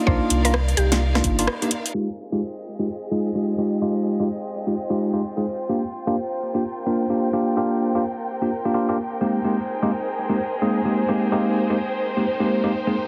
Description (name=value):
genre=UK garage, two-step garage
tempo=128 BPM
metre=4/4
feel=swing 62% on 16ths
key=F dorian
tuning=A4 = 440 Hz
part: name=mellow tine electric piano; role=stabs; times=0.0-12.9 s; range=Ab3 to Bb4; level=-24 LUFS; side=equal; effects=dub echo
part: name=rich chamber string section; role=texture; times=0.0-13.1 s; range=Eb4 to G5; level=-32 LUFS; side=equal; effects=sidechain pumping
part: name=mallet-like synth pluck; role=melody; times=0.1-1.9 s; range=G4 to C5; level=-30 LUFS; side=equal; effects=chorus, dub echo
part: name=soft dub sub bass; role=bass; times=0.1-1.5 s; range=G1 to C2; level=-24 LUFS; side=equal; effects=none
part: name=electronic kick drum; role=drums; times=0.1-1.4 s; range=none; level=-25 LUFS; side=equal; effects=none
part: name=garage drum kit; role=drums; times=0.3-1.9 s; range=hi-hat, rim click, snare drum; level=-27 LUFS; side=equal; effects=overdrive, low-pass filter on hats, low-pass filter on snare
part: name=warm analog pad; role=sustained chords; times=1.9-13.1 s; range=C5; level=-35 LUFS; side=equal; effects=chorus, sidechain pumping
room=moderate plate reverb, RT60 1.3 s, digital ambience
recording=heavily compressed radio sound, low-pass filter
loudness=-23 LUFS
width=mono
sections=0.0-1.9 A section; 1.9-13.1 B section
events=break 1.5-1.9; band accent 1.5; filter sweep 1.9-13.1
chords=0.0 Cm11; 1.9 Fm9; 5.7 Gm7; 9.2 Bb13sus4